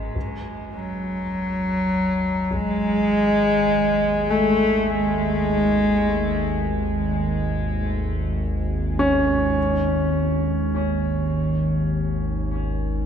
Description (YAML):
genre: dark ambient drone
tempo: free time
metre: none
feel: none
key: unclear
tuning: A4 = 440 Hz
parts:
  - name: clear concert grand piano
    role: arpeggios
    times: 0.0-13.1 s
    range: F#2 to C#4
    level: -26 LUFS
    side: right 1 dB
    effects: diffuse ambient delay
  - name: analog drone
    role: drone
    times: 0.0-13.1 s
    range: G#1 to D#2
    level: -25 LUFS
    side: equal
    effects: chorus
  - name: taiko ensemble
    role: percussion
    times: 0.2-2.8 s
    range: none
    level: -37 LUFS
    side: left 1 dB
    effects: none
  - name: warm cello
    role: melody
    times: 0.7-7.2 s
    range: F#3 to A3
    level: -21 LUFS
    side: equal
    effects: diffuse ambient delay
room: wet cathedral reverb, RT60 6.3 s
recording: none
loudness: -19 LUFS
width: side -8 dB against mid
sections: 0.2-13.1 A section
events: fade-in on synth drone 0.2-13.1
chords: 0.2 G#7sus4